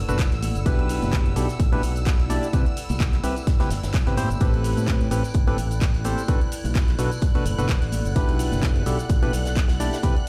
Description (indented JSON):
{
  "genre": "piano house",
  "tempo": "128 BPM",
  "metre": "4/4",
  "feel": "swing 55% on 16ths",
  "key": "A dorian",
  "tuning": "A4 = 440 Hz",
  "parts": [
    { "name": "string machine, violins", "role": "sustained chords", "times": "0.0-10.3 s", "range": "E6 to F#6", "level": "-41 LUFS", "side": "equal", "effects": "ensemble chorus, sidechain pumping" },
    { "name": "modern bright fingered electric bass", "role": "bass", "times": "0.0-9.9 s", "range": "F#1 to A2", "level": "-28 LUFS", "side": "equal", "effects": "tube saturation, sidechain pumping" },
    { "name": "warbly tape-like pad", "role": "texture", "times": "0.0-10.3 s", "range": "E4 to G5", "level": "-38 LUFS", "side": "equal", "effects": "chorus, built-in reverb, sidechain pumping" },
    { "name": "percussive organ stab", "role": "riff", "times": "0.1-10.2 s", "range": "A2 to D5", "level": "-30 LUFS", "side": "equal", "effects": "chorus, sidechain pumping, tape echo" },
    { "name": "house drum kit", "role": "drums", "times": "0.1-10.2 s", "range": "handclaps, hi-hat, shaker", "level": "-37 LUFS", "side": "equal", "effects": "none" },
    { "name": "tambourine and congas", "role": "percussion", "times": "0.1-10.2 s", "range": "none", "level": "-39 LUFS", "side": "equal", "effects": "none" },
    { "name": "electronic kick drum", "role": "drums", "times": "0.2-10.1 s", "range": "none", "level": "-23 LUFS", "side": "equal", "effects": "none" },
    { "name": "modern studio drum kit", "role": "drums", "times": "0.2-10.2 s", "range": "hi-hat, snare drum", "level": "-44 LUFS", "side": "equal", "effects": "none" }
  ],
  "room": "little or no reverb",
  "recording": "played on a big sound system in a bare room, stone room reverb",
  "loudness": "-22 LUFS",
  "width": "mono",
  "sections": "0.0-10.3 A section",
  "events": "none",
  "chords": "0.0 Bm7; 0.7 Em7; 2.5 Am9; 6.3 Bm7; 8.2 Em7",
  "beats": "0.19 | 0.66 1.13 1.60 2.07 | 2.54 3.00 3.47 3.94 | 4.41 4.88 5.35 5.82 | 6.29 6.75 7.22 7.69 | 8.16 8.63 9.10 9.57 | 10.04"
}